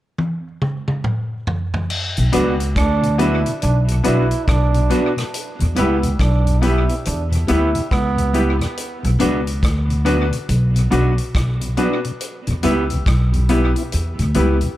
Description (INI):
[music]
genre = roots reggae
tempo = 70 BPM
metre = 4/4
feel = swing 62% on 16ths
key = B minor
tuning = A4 = 440 Hz
[part]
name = vintage drum kit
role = drums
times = 0.2-14.8 s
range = crash cymbal, hi-hat, kick drum, rim click, toms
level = -23 LUFS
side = equal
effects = analog delay
[part]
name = mellow tonewheel organ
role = accompaniment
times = 2.2-14.7 s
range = E2 to E4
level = -25 LUFS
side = left 1 dB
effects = chorus vibrato, slow rotary speaker
[part]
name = upright bass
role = bass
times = 2.2-14.6 s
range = B1 to E2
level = -18 LUFS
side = equal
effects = none
[part]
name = warm trombone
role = second line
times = 2.3-8.6 s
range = B3 to E4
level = -24 LUFS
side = right 4 dB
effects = tape echo
[part]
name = mellow electric guitar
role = accompaniment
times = 2.3-14.7 s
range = B3 to G4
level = -24 LUFS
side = right 3 dB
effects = tape echo
[part]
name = warm concert grand piano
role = stabs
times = 2.3-14.6 s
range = B3 to B4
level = -25 LUFS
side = left 6 dB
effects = none
[sound]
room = light reverb, studio reverb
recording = dark, warm production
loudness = -16 LUFS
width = side -14 dB against mid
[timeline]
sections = 0.0-1.9 A section; 1.9-14.8 B section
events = drum fill 0.2-1.9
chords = 0.0 N.C.; 1.9 Bm; 5.3 Em; 8.8 Bm; 12.2 Em